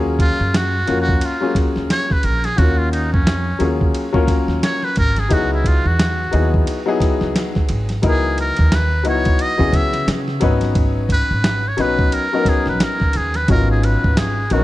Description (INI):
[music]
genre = hip hop, jazz-hop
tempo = 88 BPM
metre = 4/4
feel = swing 59% on 16ths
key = Eb minor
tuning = A4 = 440 Hz
[part]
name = warm upright piano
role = accompaniment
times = 0.0-14.6 s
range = Gb3 to Cb5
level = -21 LUFS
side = left 4 dB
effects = none
[part]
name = upright bass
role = bass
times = 0.0-14.6 s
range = Ab1 to Db3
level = -20 LUFS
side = equal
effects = none
[part]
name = trumpet with metal mute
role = melody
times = 0.2-14.6 s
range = Db4 to Fb5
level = -22 LUFS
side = right 1 dB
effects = analog delay
[part]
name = dusty soul sampler-style drum kit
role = drums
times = 0.2-14.6 s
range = hi-hat, kick drum, ride cymbal, snare drum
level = -19 LUFS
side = right 1 dB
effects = none
[sound]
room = studio reverb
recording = dark, warm production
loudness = -15 LUFS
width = side -16 dB against mid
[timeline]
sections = 0.0-14.6 A section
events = muted trumpet solo 0.0-14.6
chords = 0.0 Ebm11; 5.3 Dbm11; 10.4 Abm11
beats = 0.54 1.22 1.90 | 2.58 3.26 3.95 4.63 | 5.31 5.99 6.67 7.36 | 8.04 8.72 9.40 10.08 | 10.76 11.45 12.13 12.81 | 13.49 14.17